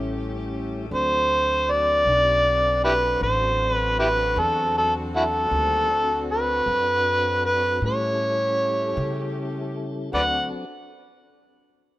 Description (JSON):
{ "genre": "slow blues", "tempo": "52 BPM (dotted quarters)", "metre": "12/8", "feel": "straight", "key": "D mixolydian", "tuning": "A4 = 437 Hz", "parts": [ { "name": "mellow tonewheel organ", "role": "sustained chords", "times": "0.0-10.7 s", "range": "Eb3 to A4", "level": "-32 LUFS", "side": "left 2 dB", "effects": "slow rotary speaker" }, { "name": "warm horn section", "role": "sustained chords", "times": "0.0-10.5 s", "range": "A3 to G4", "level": "-38 LUFS", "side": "left 1 dB", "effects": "none" }, { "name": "upright bass", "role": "bass", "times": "0.0-10.5 s", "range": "A1 to C#3", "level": "-30 LUFS", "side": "equal", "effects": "none" }, { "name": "overdriven harmonica", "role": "melody", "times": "0.9-10.5 s", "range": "E4 to F#5", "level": "-20 LUFS", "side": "equal", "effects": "none" } ], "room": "moderate plate reverb, RT60 2.5 s", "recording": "rough home demo mix", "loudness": "-20 LUFS", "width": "side -16 dB against mid", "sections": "0.0-10.1 A section; 10.1-12.0 B section", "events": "none", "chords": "0.0 A7; 0.9 D7; 7.8 A7; 10.1 D7" }